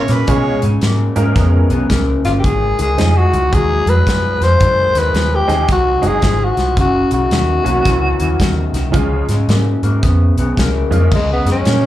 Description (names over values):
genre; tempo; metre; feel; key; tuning
electric blues shuffle; 111 BPM; 4/4; swing 63% on 8ths; Db mixolydian; A4 = 440 Hz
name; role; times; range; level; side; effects
warm harmonica; second line; 0.0-0.6 s; Cb5 to Db5; -21 LUFS; right 6 dB; overdrive, slapback echo
electric guitar through a small old amp; riff; 0.0-11.9 s; Gb2 to Cb4; -20 LUFS; left 3 dB; lush chorus, slapback echo
vintage muted fingered electric bass; bass; 0.1-11.9 s; Gb1 to Cb3; -16 LUFS; equal; none
natural country drum kit; drums; 0.1-11.8 s; crash cymbal, hi-hat, kick drum, snare drum; -18 LUFS; equal; none
honky-tonk upright piano; accompaniment; 0.3-11.1 s; F3 to Bb4; -22 LUFS; right 6 dB; slapback echo
growling tenor saxophone; melody; 2.2-11.9 s; Ab3 to C5; -16 LUFS; left 1 dB; slapback echo, digital delay
room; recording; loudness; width
light reverb; live gig heard through the venue's PA, club reverb; -12 LUFS; side -13 dB against mid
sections
0.0-11.1 A section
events
none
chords
0.0 Db; 2.4 Ab; 6.8 Gb; 8.9 Db; 11.1 Db5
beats
| 0.29 0.83 1.37 1.91 | 2.45 2.99 3.53 4.07 | 4.61 5.15 5.69 6.23 | 6.78 7.32 7.86 8.40 | 8.95 9.49 10.03 10.57 | 11.12 11.66